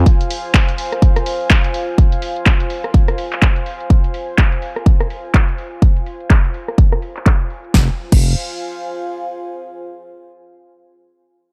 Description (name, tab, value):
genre	bass house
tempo	125 BPM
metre	4/4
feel	swing 59% on 16ths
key	F minor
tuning	A4 = 439 Hz
part	growling FM bass	bass	0.0, 7.7-8.3 s	F1	-17 LUFS	equal	overdrive, sidechain pumping
part	warbly tape-like pad	texture	0.0-9.6 s	F4 to Ab5	-29 LUFS	equal	chorus, built-in reverb, sidechain pumping
part	electronic kick drum	drums	0.1-8.2 s	none	-14 LUFS	equal	none
part	house drum kit	drums	0.1-8.2 s	crash cymbal, handclaps, hi-hat, rim click, snare drum	-24 LUFS	equal	low-pass filter on hats, low-pass filter on snare, low-pass filter on cymbals
room	little or no reverb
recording	none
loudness	-16 LUFS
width	mono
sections	0.0-7.7 A section; 7.7-9.7 B section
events	fade-out on ambient pad 0.0-7.7; filter sweep on drum 0.0-7.7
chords	0.0 Fm